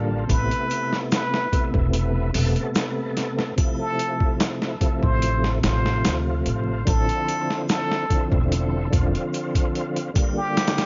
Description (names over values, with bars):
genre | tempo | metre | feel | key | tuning
trip hop | 73 BPM | 4/4 | straight | A minor | A4 = 441 Hz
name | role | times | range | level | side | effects
overdriven tonewheel organ | accompaniment | 0.0-10.9 s | C3 to A4 | -29 LUFS | equal | chorus vibrato, fast rotary speaker, harmonic tremolo, tape echo
upright bass | bass | 0.0-9.1 s | E1 to D2 | -26 LUFS | equal | tube saturation
trumpet with plunger mute | melody | 0.3-10.9 s | G4 to C5 | -30 LUFS | equal | tape echo
boom bap sampler-style drum kit | drums | 0.3-10.9 s | hi-hat, kick drum, snare drum | -26 LUFS | equal | none
triangle and egg shaker | percussion | 0.3-10.7 s | none | -44 LUFS | equal | none
room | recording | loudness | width
small room ambience | dry, gritty hardware recording, vinyl crackle, nothing above 7.5 kHz | -23 LUFS | mono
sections
0.0-10.9 A section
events
none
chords
0.3 Amadd9; 3.6 Fmaj7; 6.9 Dm9; 10.2 Bb6